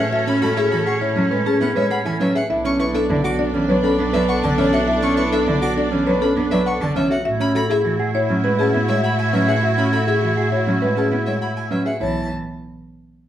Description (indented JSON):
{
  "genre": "classical, minimalist pattern music",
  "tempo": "101 BPM",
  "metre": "4/4",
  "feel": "straight",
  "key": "B dorian",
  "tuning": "A4 = 439 Hz",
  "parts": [
    { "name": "buzzing marimba with medium hard mallets", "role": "melody", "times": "0.0-12.3 s", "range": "G#4 to F#5", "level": "-23 LUFS", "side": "left 4 dB", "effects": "none" },
    { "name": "warm oboe", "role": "second line", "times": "0.0-11.8 s", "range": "C#4 to E4", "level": "-26 LUFS", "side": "right 2 dB", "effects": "none" },
    { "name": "rich studio string section", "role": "sustained chords", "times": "0.0-11.8 s", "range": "F#4 to E5", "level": "-28 LUFS", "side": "left 3 dB", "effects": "none" },
    { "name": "clear violin", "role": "arpeggios", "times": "0.0-12.3 s", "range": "E5 to D6", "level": "-30 LUFS", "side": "left 2 dB", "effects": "none" },
    { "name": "mellow electric guitar", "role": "arpeggios", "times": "0.0-12.3 s", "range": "C#4 to B4", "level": "-22 LUFS", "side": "right 2 dB", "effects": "none" },
    { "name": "clear double bass", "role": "bass", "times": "0.0-12.3 s", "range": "B1 to A2", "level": "-24 LUFS", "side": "right 2 dB", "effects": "none" },
    { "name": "rich cello", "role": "accompaniment", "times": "0.4-12.3 s", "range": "D3 to B3", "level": "-24 LUFS", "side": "equal", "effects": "none" }
  ],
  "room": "wet large studio reverb, RT60 0.9 s",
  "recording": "heard from further back in the room",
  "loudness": "-16 LUFS",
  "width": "side -11 dB against mid",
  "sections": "0.0-12.0 A section; 12.0-13.3 B section",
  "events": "none",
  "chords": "0.0 A69; 2.5 Bm9; 7.3 F#m9/A; 12.0 Bsus2"
}